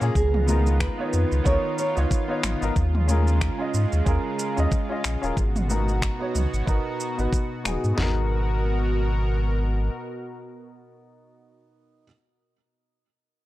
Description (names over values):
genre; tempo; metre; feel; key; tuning
sunset chillout; 92 BPM; 4/4; swing 57% on 16ths; G# dorian; A4 = 439 Hz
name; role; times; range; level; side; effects
clear baby grand piano; accompaniment; 0.0-12.1 s; A#3 to D#5; -30 LUFS; moving between left 5 dB and right 5 dB; auto-pan, low-pass filter, tape echo
lush unison pad; sustained chords; 0.0-11.3 s; B2 to A#5; -30 LUFS; equal; chorus
warm sub bass; bass; 0.0-9.9 s; D#1 to A#2; -23 LUFS; equal; tube saturation
deep house drum kit; drums; 0.0-8.0 s; finger snaps, shaker, toms; -31 LUFS; equal; overdrive
flamenco guitar; melody; 0.2-2.4 s; G#4 to C#5; -29 LUFS; right 2 dB; analog delay
smooth R&B drum kit; drums; 0.2-8.2 s; kick drum, snare drum, toms; -25 LUFS; equal; none
congas; percussion; 0.5-6.0 s; none; -33 LUFS; left 4 dB; none
room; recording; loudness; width
small room ambience; dry, gritty hardware recording; -21 LUFS; side -16 dB against mid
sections
0.0-8.0 A section; 8.0-10.6 B section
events
filter sweep on grand piano 0.0-8.0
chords
0.2 C#13; 2.8 D#9sus4; 5.4 G#m9